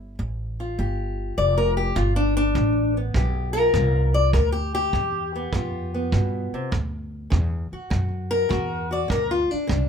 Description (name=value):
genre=acoustic country blues, solo or duo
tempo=101 BPM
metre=4/4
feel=swing 68% on 8ths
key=G mixolydian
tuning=A4 = 440 Hz
part: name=fingerpicked steel-string acoustic guitar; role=melody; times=0.0-9.9 s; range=G2 to D5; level=-24 LUFS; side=left 2 dB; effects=none
part: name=upright bass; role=bass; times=0.0-9.9 s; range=F1 to G2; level=-24 LUFS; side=equal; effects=none
part: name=kick drum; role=drums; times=2.0-9.9 s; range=none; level=-28 LUFS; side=right 2 dB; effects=none
room=light reverb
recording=minimal, uncompressed stereo recording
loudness=-21 LUFS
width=side -7 dB against mid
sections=0.0-9.9 A section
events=steel-string acoustic guitar solo 0.0-9.9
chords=0.0 G7; 6.7 D